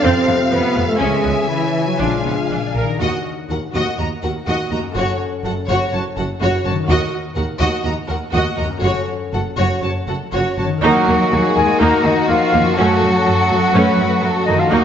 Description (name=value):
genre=cinematic, heroic adventure film score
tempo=123 BPM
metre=4/4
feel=straight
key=Eb minor from 3.0 s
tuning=A4 = 440 Hz
part: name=clear studio violin section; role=melody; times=0.0-14.8 s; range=Gb4 to Bb5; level=-25 LUFS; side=left 4 dB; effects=none
part: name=dark symphonic violin section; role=second line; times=0.0-14.8 s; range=Gb4 to F5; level=-25 LUFS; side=left 1 dB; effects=none
part: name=mellow clarinet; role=second line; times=0.0-2.5 s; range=E4 to C5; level=-23 LUFS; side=left 1 dB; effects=none
part: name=clear symphonic viola section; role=accompaniment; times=0.0-14.8 s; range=Gb3 to A#4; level=-22 LUFS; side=right 2 dB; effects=none
part: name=mellow French horn section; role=sustained chords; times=0.0-2.8, 10.8-14.8 s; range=C3 to Gb4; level=-23 LUFS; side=left 2 dB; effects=none
part: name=concert harp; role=arpeggios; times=0.0-14.8 s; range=Gb2 to A5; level=-26 LUFS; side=left 7 dB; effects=none
part: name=rich symphonic double bass section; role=bass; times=0.0-14.8 s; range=Gb1 to Gb2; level=-23 LUFS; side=right 2 dB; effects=none
part: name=warm symphonic cello section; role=bass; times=0.0-14.8 s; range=Eb2 to C4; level=-23 LUFS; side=right 2 dB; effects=none
part: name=mellow cor anglais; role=second line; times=10.8-14.8 s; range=Eb4 to Bb4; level=-22 LUFS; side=right 3 dB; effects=none
part: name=small flute group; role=second line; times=10.8-14.8 s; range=Eb5 to Bb5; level=-19 LUFS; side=left 2 dB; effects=none
room=wet scoring stage reverb, RT60 1.5 s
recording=nothing above 7.8 kHz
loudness=-15 LUFS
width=side -8 dB against mid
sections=0.0-3.0 A section; 3.0-10.8 B section; 10.8-14.8 C section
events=none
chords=0.0 F; 1.0 C#m; 2.0 A#7; 3.0 Ebm; 5.0 Gbm; 6.9 Ebm; 8.8 Gbm; 10.8 Ebm; 12.8 Gbm